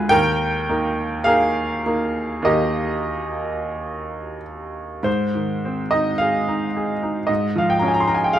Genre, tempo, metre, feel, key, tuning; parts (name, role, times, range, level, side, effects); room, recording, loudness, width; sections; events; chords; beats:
classical, romantic nocturne for solo piano; 44-58 BPM; 4/4; rubato; Ab major; A4 = 439 Hz
clear baby grand piano; solo; 0.0-8.4 s; Eb2 to C6; -19 LUFS; right 1 dB
moderate large studio reverb, RT60 0.9 s; -19 LUFS; side -11 dB against mid
0.0-5.1 A section; 5.1-8.4 B section
0.1 Eb; 5.1 Ab; 7.3 Db/Ab
| 0.12 1.27 2.48 3.75 | 5.06 6.21 7.30 8.35